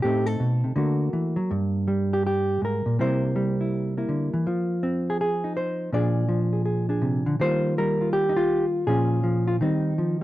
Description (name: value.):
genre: solo jazz.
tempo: 163 BPM.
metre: 4/4.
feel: swing 64% on 8ths.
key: Eb major.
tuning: A4 = 440 Hz.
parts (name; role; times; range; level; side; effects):
hollow-body jazz guitar; solo; 0.0-10.2 s; G2 to D5; -22 LUFS; equal; none.
room: light reverb.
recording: dark, warm production.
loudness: -22 LUFS.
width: side -15 dB against mid.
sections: 0.0-10.2 A section.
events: none.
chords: 0.0 Adim; 0.8 D; 1.5 Gm; 3.0 C7; 4.5 Fm7; 5.9 Bb9; 7.4 Ebadd9; 8.9 Bbm7; 9.6 Eb69.